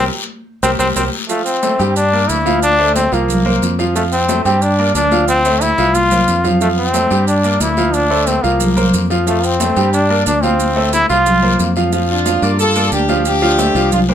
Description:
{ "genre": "latin, salsa", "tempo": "181 BPM", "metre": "4/4", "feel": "straight", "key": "F major", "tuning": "A4 = 440 Hz", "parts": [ { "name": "brilliant trombone", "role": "melody", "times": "0.0-11.7 s", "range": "A3 to F4", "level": "-15 LUFS", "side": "left 1 dB", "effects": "none" }, { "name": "bright upright piano", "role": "accompaniment", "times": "0.0-14.1 s", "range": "F3 to G5", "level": "-18 LUFS", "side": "right 2 dB", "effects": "none" }, { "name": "fingered electric bass", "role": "bass", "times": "0.0-14.1 s", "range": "C2 to G2", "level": "-18 LUFS", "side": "equal", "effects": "none" }, { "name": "congas", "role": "percussion", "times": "0.6-14.1 s", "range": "none", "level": "-22 LUFS", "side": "left 1 dB", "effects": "none" }, { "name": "guiro", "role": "percussion", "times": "0.6-14.1 s", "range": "none", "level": "-27 LUFS", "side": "left 6 dB", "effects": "none" }, { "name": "maracas", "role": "percussion", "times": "0.6-14.1 s", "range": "none", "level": "-26 LUFS", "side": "right 8 dB", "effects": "none" }, { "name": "clear horn section", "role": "melody", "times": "12.1-14.1 s", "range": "D4 to A4", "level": "-16 LUFS", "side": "equal", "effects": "none" } ], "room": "moderate small room reverb, RT60 0.5 s", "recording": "none", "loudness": "-12 LUFS", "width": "side -9 dB against mid", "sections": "0.0-1.3 A section; 1.3-11.9 B section; 11.9-14.1 C section", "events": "band accent 0.0-1.3; drum fill 5.6-6.6", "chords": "0.0 C5; 1.3 F; 2.0 Gm7; 2.6 Dm7; 3.3 C7sus4; 4.0 F; 4.6 Gm7; 5.3 Dm7; 5.9 C7sus4; 6.6 F; 7.3 Gm7; 7.9 Dm7; 8.6 C7sus4; 9.3 F; 9.9 Gm7; 10.6 Dm7; 11.3 C7sus4; 11.9 Bb6/F; 12.6 Gm9; 13.3 Dm7" }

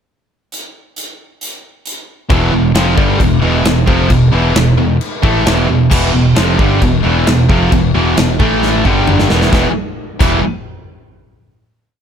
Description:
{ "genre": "heavy metal", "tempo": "133 BPM", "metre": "4/4", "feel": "straight", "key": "unclear", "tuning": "A4 = 440 Hz", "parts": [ { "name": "big rock drum kit", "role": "drums", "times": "0.5-10.3 s", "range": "china cymbal, crash cymbal, hi-hat, kick drum, snare drum, toms", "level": "-16 LUFS", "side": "equal", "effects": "none" }, { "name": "fuzz guitar", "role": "riff", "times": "2.3-10.4 s", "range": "E2 to E4", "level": "-18 LUFS", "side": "equal", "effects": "distortion" }, { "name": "heavy high-gain guitar", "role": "riff", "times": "2.3-10.4 s", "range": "E2 to A3", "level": "-17 LUFS", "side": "left 9 dB", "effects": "distortion" }, { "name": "heavy high-gain guitar", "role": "riff", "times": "2.3-10.4 s", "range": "E2 to A3", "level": "-16 LUFS", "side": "right 8 dB", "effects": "distortion" }, { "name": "modern bright picked electric bass", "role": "bass", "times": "2.3-10.4 s", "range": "E1 to A1", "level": "-16 LUFS", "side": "equal", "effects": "none" } ], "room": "little or no reverb", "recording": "none", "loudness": "-10 LUFS", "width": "side -8 dB against mid", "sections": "0.5-2.3 pickup bar; 2.3-9.5 riff; 9.5-11.3 final chord", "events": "drum fill 8.6-9.5", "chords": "0.5 N.C.; 2.3 Em; 8.4 A5; 8.8 G5; 9.3 E5; 9.5 Em" }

